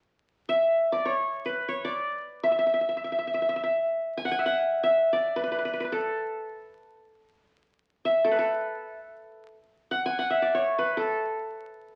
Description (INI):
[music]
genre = Turkish makam ensemble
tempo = free time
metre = none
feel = none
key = A makam rast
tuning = A4 = 441 Hz
[part]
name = qanun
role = solo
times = 0.5-12.0 s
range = A4 to G#5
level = -27 LUFS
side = equal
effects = none
[sound]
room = moderate large studio reverb, RT60 0.9 s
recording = very old 78 rpm record, vinyl crackle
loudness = -27 LUFS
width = mono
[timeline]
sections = 0.0-9.6 A section; 9.6-12.0 A section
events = none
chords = none